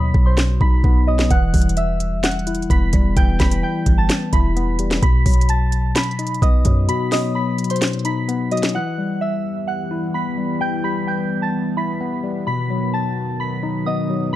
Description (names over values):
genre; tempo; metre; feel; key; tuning
hip hop, trap; 129 BPM; 4/4; half-time; E harmonic minor; A4 = 440 Hz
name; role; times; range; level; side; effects
soft synth bell; melody; 0.0-14.4 s; C5 to B6; -25 LUFS; right 1 dB; chorus, phaser, low-pass filter, tape echo
tine electric piano; accompaniment; 0.0-14.4 s; B2 to E4; -22 LUFS; left 4 dB; phaser, low-pass filter
warm 808-style bass; bass; 0.0-6.9 s; E1 to F#2; -19 LUFS; equal; none
trap drum kit; drums; 0.1-8.7 s; hi-hat, kick drum, snare drum; -18 LUFS; equal; none
warm analog pad; sustained chords; 9.1-14.4 s; D#3 to B3; -27 LUFS; right 3 dB; chorus
room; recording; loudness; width
little or no reverb; dark, warm production; -16 LUFS; side -14 dB against mid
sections
0.0-8.7 A section; 8.7-14.4 B section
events
break 0.0-1.3, 6.9-8.7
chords
0.0 B; 1.3 Emadd9; 5.0 B; 8.7 Emadd9; 12.5 B